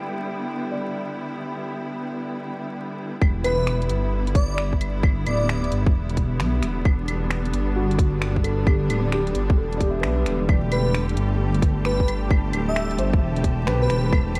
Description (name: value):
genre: future garage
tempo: 132 BPM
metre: 4/4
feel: swing 66% on 16ths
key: E minor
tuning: A4 = 440 Hz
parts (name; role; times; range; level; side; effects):
- felt-muted upright piano; accompaniment; 0.0-14.4 s; F#4 to E5; -33 LUFS; equal; sidechain pumping, tape echo
- bright symphonic string section; sustained chords; 0.0-14.4 s; D3 to G4; -31 LUFS; equal; sidechain pumping
- wind-like tuned noise texture; texture; 0.0-3.2, 11.2-14.4 s; G5 to A5; -42 LUFS; equal; built-in reverb
- dark detuned saw bass; bass; 3.2-14.4 s; D1 to B1; -26 LUFS; equal; sidechain pumping
- electronic kick drum; drums; 3.2-14.2 s; none; -22 LUFS; equal; overdrive
- garage drum kit; drums; 3.2-14.4 s; claves, finger snaps, hi-hat; -33 LUFS; equal; overdrive
- airy dreamy lead; melody; 3.4-5.7, 10.7-14.1 s; B4 to E5; -31 LUFS; equal; chorus, tape echo
room: light reverb, digital ambience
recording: vinyl crackle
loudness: -23 LUFS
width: mono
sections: 0.0-3.2 A section; 3.2-14.4 B section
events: none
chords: 0.0 Em7; 10.5 Gsus2